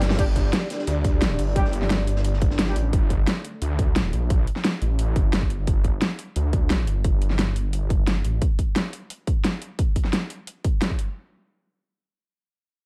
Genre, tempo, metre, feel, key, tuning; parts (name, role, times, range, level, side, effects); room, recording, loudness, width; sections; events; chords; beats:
dark technical drum and bass; 175 BPM; 4/4; straight; A4 = 439 Hz
dark analog pad; sustained chords; 0.0-5.6 s; D4 to D5; -34 LUFS; equal; chorus, sidechain pumping
detuned saw bass; bass; 0.0-8.4 s; G1 to D2; -26 LUFS; equal; chorus
crunchy breakbeat drum kit; drums; 0.0-2.8 s; hi-hat, snare drum; -39 LUFS; equal; high-pass filter on hats, small room reverb, high-pass filter on snare, high-pass filter on room
dubstep drum kit; drums; 0.0-11.1 s; crash cymbal, hi-hat, snare drum; -28 LUFS; equal; small room reverb
mellow brass ensemble; stabs; 0.2-2.8 s; G3 to G4; -34 LUFS; equal; low-pass filter, tape echo
electronic kick drum; drums; 0.2-11.0 s; -25 LUFS; equal; small room reverb
small room ambience; -23 LUFS; mono
0.2-11.2 A section
drum fill 0.0; filter sweep on detuned saw bass 0.2-8.4; filter sweep on analog synth pad 0.2-5.7
0.2 G5
| 0.19 0.53 0.87 1.22 | 1.56 1.90 2.24 2.59 | 2.93 3.27 3.62 3.96 | 4.30 4.64 4.99 5.33 | 5.67 6.02 6.36 6.70 | 7.04 7.39 7.73 8.07 | 8.42 8.76 9.10 9.44 | 9.79 10.13 10.47 10.82